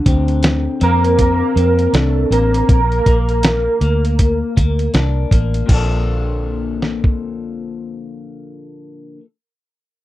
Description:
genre	indie pop, bedroom pop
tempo	80 BPM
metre	4/4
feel	swing 60% on 16ths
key	Bb major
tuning	A4 = 440 Hz
part	electric guitar through a small old amp	accompaniment	0.0-9.2 s	Bb2 to A4	-22 LUFS	left 4 dB	lush chorus, vibrato effect
part	vintage muted fingered electric bass	bass	0.1-9.1 s	A1 to F2	-17 LUFS	equal	none
part	dusty soul sampler-style drum kit	drums	0.1-7.2 s	crash cymbal, hi-hat, kick drum, snare drum	-15 LUFS	equal	none
part	warbly nostalgic lead	melody	0.8-4.9 s	A4 to Bb4	-19 LUFS	right 3 dB	ensemble chorus, tape echo
room	little or no reverb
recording	dry, close 1970s-style studio recording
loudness	-13 LUFS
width	side -15 dB against mid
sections	0.0-5.7 A section; 5.7-8.7 B section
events	none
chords	0.0 Dm7; 2.7 Bb; 5.7 Bbmaj7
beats	0.44 1.19 1.94 | 2.69 3.44 4.19 4.94 | 5.69 6.44 7.19 7.94

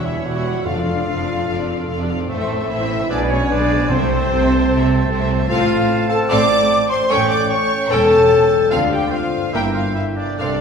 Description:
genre	classical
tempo	148 BPM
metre	4/4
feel	rubato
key	F major from 5.5 s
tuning	A4 = 440 Hz
part	rich symphonic violin section	melody	0.0-10.6 s	B4 to G5	-29 LUFS	left 2 dB	none
part	mellow cor anglais	second line	0.0-10.6 s	A3 to D5	-27 LUFS	right 2 dB	none
part	rich studio violin section	second line	0.0-10.6 s	A4 to D6	-28 LUFS	left 1 dB	none
part	silver concert flute	second line	0.0-10.6 s	A4 to D6	-26 LUFS	left 2 dB	none
part	warm clarinet	second line	0.0-10.6 s	C#5 to A5	-28 LUFS	right 1 dB	none
part	clear symphonic viola section	accompaniment	0.0-10.6 s	G#3 to C5	-27 LUFS	left 1 dB	none
part	warm bassoon	accompaniment	0.0-10.6 s	G3 to C#4	-27 LUFS	left 2 dB	none
part	dark French horn section	sustained chords	0.0-10.6 s	A3 to D5	-19 LUFS	left 2 dB	none
part	concert harp	arpeggios	0.0-10.6 s	G2 to Bb4	-28 LUFS	left 5 dB	none
part	rich symphonic double bass section	bass	0.0-10.6 s	E1 to D2	-24 LUFS	right 3 dB	none
part	warm symphonic cello section	bass	0.0-10.6 s	E2 to D3	-24 LUFS	right 4 dB	none
part	timpani	percussion	0.7-1.2, 3.9-4.5 s	F2 to C3	-29 LUFS	right 4 dB	none
room	wet recital hall reverb, RT60 1.4 s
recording	heard from further back in the room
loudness	-15 LUFS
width	side -6 dB against mid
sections	0.0-10.6 A section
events	none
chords	0.0 C#dim/E; 0.7 Dm/F; 2.3 Am; 3.1 G#dim/B; 3.9 Am/C; 5.5 F/A; 7.1 A7; 8.7 Dm7; 9.5 Gm7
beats	0.25 | 0.65 1.06 1.47 1.88 | 2.29 2.69 3.10 3.50 | 3.90 4.29 4.69 5.09 | 5.49 5.89 6.30 6.70 | 7.10 7.50 7.90 8.31 | 8.71 9.12 9.53 9.95 | 10.39

